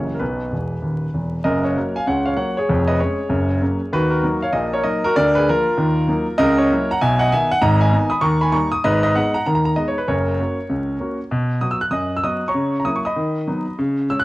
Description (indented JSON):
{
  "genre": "jazz, stride piano",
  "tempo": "195 BPM",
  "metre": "4/4",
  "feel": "swing 63% on 8ths",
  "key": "F# major, B major from 6.4 s",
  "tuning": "A4 = 441 Hz",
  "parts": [
    { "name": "clear grand piano", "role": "solo", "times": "0.0-14.2 s", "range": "D#1 to F#6", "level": "-17 LUFS", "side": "equal", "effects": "cassette tape" }
  ],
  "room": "moderate spring reverb, RT60 1.5 s, small room ambience",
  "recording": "home recording on cassette, vinyl crackle",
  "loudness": "-17 LUFS",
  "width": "side -18 dB against mid",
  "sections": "0.0-1.5 A section; 1.5-11.3 B section; 11.3-14.2 A section",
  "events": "grand piano fill 0.5-1.5",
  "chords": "0.2 B; 1.5 F#; 2.7 C#/E#; 3.3 F#; 3.9 D#m; 5.2 A#/D; 5.8 D#m; 6.4 F#7/C#; 7.0 B; 7.6 G#m; 8.2 D#; 8.8 G#m; 10.1 F#; 11.3 B; 12.5 F#7/C#; 13.2 B/D#"
}